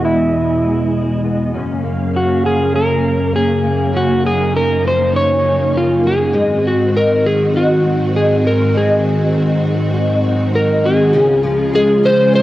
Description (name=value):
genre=dream pop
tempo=100 BPM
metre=4/4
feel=straight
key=Gb lydian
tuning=A4 = 436 Hz
part: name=electric slide guitar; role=melody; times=0.0-12.4 s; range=E4 to Db5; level=-16 LUFS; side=equal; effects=low-pass filter, cassette tape, tape echo
part: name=string machine, violas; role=sustained chords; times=0.0-12.4 s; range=Db2 to F5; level=-16 LUFS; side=equal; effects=ensemble chorus, low-pass filter
part: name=fingerpicked twelve-string acoustic guitar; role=arpeggios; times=0.0-12.4 s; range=Gb2 to Eb4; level=-21 LUFS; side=left 2 dB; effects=ensemble chorus, low-pass filter, tape echo
room=moderate spring reverb, RT60 1.6 s, studio ambience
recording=home recording on cassette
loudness=-12 LUFS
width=side -15 dB against mid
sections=0.0-11.1 A section; 11.1-12.4 B section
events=none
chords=0.0 Emaj7; 1.5 Gbmaj7; 6.3 Ab7; 11.1 Db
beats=0.34 0.94 | 1.53 2.13 2.73 3.33 | 3.94 4.54 5.13 5.74 | 6.33 6.93 7.54 8.13 | 8.73 9.34 9.94 10.54 | 11.13 11.73 12.34